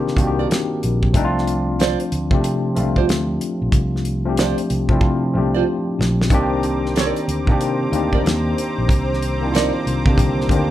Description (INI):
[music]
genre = R&B, neo-soul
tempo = 93 BPM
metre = 4/4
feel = swing 64% on 16ths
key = C dorian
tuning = A4 = 443 Hz
[part]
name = tine electric piano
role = accompaniment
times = 0.0-10.7 s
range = D3 to G4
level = -21 LUFS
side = left 2 dB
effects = medium stereo tremolo
[part]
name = fingered electric bass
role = bass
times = 0.0-10.7 s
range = Bb1 to C3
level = -22 LUFS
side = equal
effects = none
[part]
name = damped 70s drum kit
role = drums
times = 0.1-10.7 s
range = hi-hat, kick drum, snare drum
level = -19 LUFS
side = equal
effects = none
[part]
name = nylon-string guitar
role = second line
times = 0.4-9.7 s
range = Eb4 to D5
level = -22 LUFS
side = right 8 dB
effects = none
[part]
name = lush unison pad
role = sustained chords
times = 6.3-10.7 s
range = C4 to D6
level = -27 LUFS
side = right 2 dB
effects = chorus
[sound]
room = light reverb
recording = band playing live in one room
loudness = -16 LUFS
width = side -13 dB against mid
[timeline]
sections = 0.0-10.7 A section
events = drum fill 5.0-6.3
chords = 0.0 Cm9; 1.1 Dm7; 6.3 Cm9